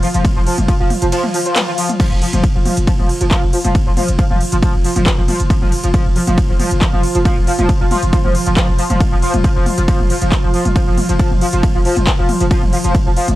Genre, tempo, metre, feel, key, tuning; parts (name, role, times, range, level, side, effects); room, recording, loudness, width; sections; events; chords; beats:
driving peak-time techno; 137 BPM; 4/4; straight; A4 = 442 Hz
overdriven synth lead; riff; 0.0-13.3 s; F3; -20 LUFS; equal; distortion, tube saturation, ensemble chorus, sidechain pumping, analog delay
growling 808-style bass; bass; 0.0-13.4 s; F1; -19 LUFS; equal; overdrive, sidechain pumping, low-pass filter
deep dark ambient pad; drone; 0.0-13.4 s; F3 to F4; -23 LUFS; right 1 dB; chorus, built-in reverb, sidechain pumping
techno drum kit; drums; 0.0-13.4 s; crash cymbal, handclaps, hi-hat, ride cymbal, toms; -22 LUFS; equal; overdrive, sidechain pumping on toms, sidechain pumping on hats, sidechain pumping on cymbals
electronic kick drum; drums; 0.2-13.0 s; -15 LUFS; equal; overdrive
swell; sound effects; 1.3-2.0 s; -24 LUFS; left 3 dB
little or no reverb; dry, gritty hardware recording; -12 LUFS; side -16 dB against mid
0.0-13.4 A section
swell 1.3-2.0
0.0 F5
| 0.25 0.68 1.12 1.56 | 2.00 2.44 2.87 3.31 | 3.75 4.19 4.63 5.06 | 5.50 5.94 6.38 6.82 | 7.25 7.69 8.13 8.57 | 9.01 9.44 9.88 10.32 | 10.76 11.20 11.63 12.07 | 12.51 12.95